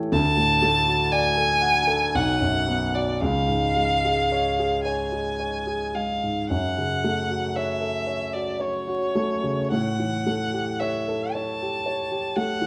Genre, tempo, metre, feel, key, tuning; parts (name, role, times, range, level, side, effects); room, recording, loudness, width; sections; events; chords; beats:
classical, romantic duo for violin and grand piano; 52-62 BPM; 3/4; rubato; F# minor; A4 = 440 Hz
warm grand piano; accompaniment; 0.0-12.7 s; B1 to F#5; -27 LUFS; equal
rich violin; melody; 0.1-12.7 s; C#5 to A5; -27 LUFS; equal
moderate scoring stage reverb, RT60 1.4 s; vinyl crackle; -24 LUFS; mono
0.0-12.7 A section
0.1 D; 2.1 B5; 3.2 C#; 6.5 F#m; 9.7 A7
| 0.11 1.11 2.13 | 3.21 4.30 5.39 | 6.49 7.55 8.60 | 9.71 10.79 11.85